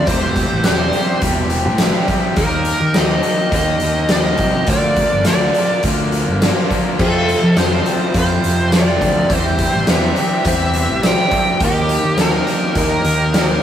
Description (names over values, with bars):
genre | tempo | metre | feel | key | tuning
classic rock | 104 BPM | 4/4 | straight | unclear | A4 = 439 Hz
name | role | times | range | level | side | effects
fuzz lead guitar | melody | 0.0-13.6 s | G4 to G5 | -20 LUFS | right 1 dB | wah, distortion
crunchy overdriven guitar | riff | 0.0-13.6 s | F2 to Eb4 | -23 LUFS | left 3 dB | none
crunchy overdriven guitar | riff | 0.0-13.6 s | F2 to G4 | -25 LUFS | right 2 dB | none
fuzz fingered electric bass | bass | 0.0-13.6 s | E1 to F3 | -19 LUFS | equal | overdrive
big rock drum kit | drums | 0.1-13.5 s | crash cymbal, hi-hat, kick drum, snare drum, tambourine | -18 LUFS | equal | none
clear concert grand piano | accompaniment | 7.0-13.6 s | Eb4 to B5 | -27 LUFS | left 2 dB | none
tonewheel organ | sustained chords | 7.0-13.6 s | Bb3 to F5 | -30 LUFS | equal | none
room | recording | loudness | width
moderate stone room reverb, RT60 0.9 s | rough rehearsal-room recording | -13 LUFS | side -10 dB against mid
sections
0.0-13.6 A section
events
none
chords
0.1 C/E; 2.4 Eb; 4.7 Bb; 7.0 F; 9.3 C; 11.6 Eb